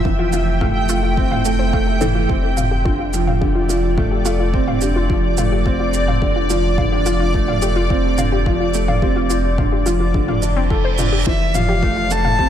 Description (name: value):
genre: piano and strings electronica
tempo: 107 BPM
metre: 4/4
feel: straight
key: unclear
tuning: A4 = 438 Hz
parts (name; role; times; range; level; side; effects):
- granular cloud pad; sustained chords; 0.0-12.5 s; C5 to A5; -24 LUFS; right 1 dB; built-in reverb
- warm upright piano; riff; 0.0-12.5 s; D3 to A4; -21 LUFS; right 2 dB; wide subtle chorus, diffuse ambient delay
- warm sub bass; bass; 0.0-12.5 s; F1; -21 LUFS; equal; sidechain pumping
- electronic kick drum; drums; 0.1-12.5 s; none; -21 LUFS; equal; none
- warbly dusty pluck; arpeggios; 0.2-12.5 s; C4 to F5; -25 LUFS; left 4 dB; chorus, sidechain pumping, diffuse ambient delay
- electronic shaker and toms; drums; 0.3-12.4 s; none; -26 LUFS; right 1 dB; none
- reverse cymbal; sound effects; 10.4-11.3 s; none; -28 LUFS; right 6 dB; none
- dark violin; melody; 11.3-12.5 s; E5 to A5; -19 LUFS; left 3 dB; none
room: light reverb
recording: none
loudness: -15 LUFS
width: side -10 dB against mid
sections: 0.0-12.5 A section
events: reverse cymbal 10.4-11.3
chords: 0.0 Fmaj7; 2.3 Dm7/F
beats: | 0.05 0.61 1.17 1.73 | 2.29 2.86 3.42 3.98 | 4.54 5.10 5.66 6.22 | 6.78 7.34 7.90 8.46 | 9.02 9.59 10.15 10.71 | 11.27 11.83 12.39